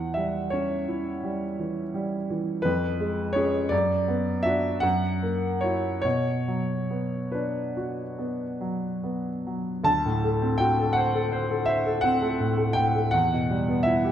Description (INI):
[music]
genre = classical, romantic nocturne for solo piano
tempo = 46-58 BPM (dotted quarters)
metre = 9/8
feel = rubato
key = unclear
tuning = A4 = 440 Hz
[part]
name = warm baby grand piano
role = solo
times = 0.0-14.1 s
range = D2 to A5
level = -23 LUFS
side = equal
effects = none
[sound]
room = moderate scoring stage reverb, RT60 1.7 s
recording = minimal, uncompressed stereo recording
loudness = -24 LUFS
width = side -10 dB against mid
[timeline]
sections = 0.0-9.9 A section; 9.9-14.1 B section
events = none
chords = 0.0 C#dim/E; 2.7 C#7/E#; 3.7 Bm/F#; 4.8 F#7; 6.0 Bm; 9.9 D7; 13.1 Em